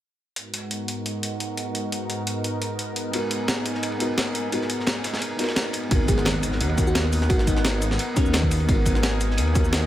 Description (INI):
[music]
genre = liquid drum and bass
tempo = 173 BPM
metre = 4/4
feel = straight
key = G# minor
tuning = A4 = 440 Hz
[part]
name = lush unison pad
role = sustained chords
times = 0.4-9.9 s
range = G#2 to G#5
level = -30 LUFS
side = right 1 dB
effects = chorus, sidechain pumping
[part]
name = breakbeat sampler-style drum kit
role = drums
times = 0.4-9.8 s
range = cabasa, hi-hat, snare drum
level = -27 LUFS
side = equal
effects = none
[part]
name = felt-muted upright piano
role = accompaniment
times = 3.1-9.9 s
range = B3 to A#4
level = -29 LUFS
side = left 2 dB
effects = digital delay
[part]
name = crunchy breakbeat drum kit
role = drums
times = 3.1-9.9 s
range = ride cymbal, snare drum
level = -33 LUFS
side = right 1 dB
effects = high-pass filter on cymbals, high-pass filter on snare, high-pass filter on room
[part]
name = swelling detuned saw bass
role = bass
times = 5.9-9.9 s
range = G#1 to D#2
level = -24 LUFS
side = equal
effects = none
[part]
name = electronic kick drum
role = drums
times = 5.9-9.6 s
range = none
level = -22 LUFS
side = equal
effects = overdrive
[part]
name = impact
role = sound effects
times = 5.9-7.3 s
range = none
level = -31 LUFS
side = equal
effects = none
[part]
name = bell-like FM electric piano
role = melody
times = 6.1-8.4 s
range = C#4 to G#4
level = -30 LUFS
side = left 1 dB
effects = chorus, digital delay
[sound]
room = light reverb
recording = none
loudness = -21 LUFS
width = side -13 dB against mid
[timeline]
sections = 0.4-5.9 A section; 5.9-9.9 B section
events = drop 5.9-9.9; impact 5.9-7.3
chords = 0.4 G#m9